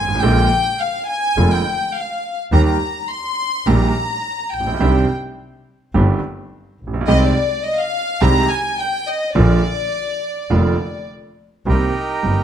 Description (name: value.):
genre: tango.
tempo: 105 BPM.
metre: 4/4.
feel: rubato.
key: unclear.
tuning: A4 = 439 Hz.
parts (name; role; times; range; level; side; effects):
warm studio violin section; second line; 0.0-11.0 s; D5 to C6; -20 LUFS; left 2 dB; none.
bright concert grand piano; accompaniment; 0.0-12.4 s; F1 to G4; -19 LUFS; right 4 dB; none.
clear double bass; bass; 0.0-12.4 s; F1 to Eb2; -17 LUFS; equal; none.
bandoneon; melody; 11.7-12.4 s; Eb4 to Bb4; -21 LUFS; right 4 dB; none.
room: moderate large studio reverb, RT60 1.3 s.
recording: close, detailed microphones.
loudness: -16 LUFS.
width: side -9 dB against mid.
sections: 0.0-11.7 A section.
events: violin section solo 0.0-11.7.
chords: 0.2 Bb7; 2.5 Eb; 4.8 Cmadd9; 7.1 Abmaj7/C; 9.4 Bb; 11.7 Cm7.